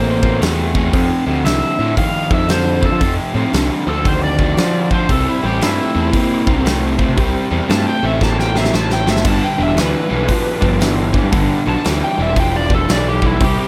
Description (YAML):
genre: blues rock power trio and southern rock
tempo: 116 BPM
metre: 4/4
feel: swing 64% on 8ths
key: C major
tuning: A4 = 439 Hz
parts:
  - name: overdriven slide guitar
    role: melody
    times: 0.0-13.7 s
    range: E4 to A5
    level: -24 LUFS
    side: equal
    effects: none
  - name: raw garage guitar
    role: riff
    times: 0.0-13.7 s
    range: F2 to Bb3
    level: -21 LUFS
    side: equal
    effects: overdrive
  - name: fuzz picked electric bass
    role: bass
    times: 0.0-13.6 s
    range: E1 to F3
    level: -21 LUFS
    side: equal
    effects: overdrive
  - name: big rock drum kit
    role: drums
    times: 0.2-13.6 s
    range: crash cymbal, hi-hat, kick drum, snare drum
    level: -22 LUFS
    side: equal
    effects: none
  - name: overdriven tonewheel organ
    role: sustained chords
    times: 5.1-13.7 s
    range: B3 to D5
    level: -30 LUFS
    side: equal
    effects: none
room: light reverb, small room ambience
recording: none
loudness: -16 LUFS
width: mono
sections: 0.0-13.7 A section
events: electric slide guitar solo 0.0-13.7; drum fill 8.2-9.2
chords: 0.0 C; 0.9 F5; 5.1 C; 9.2 G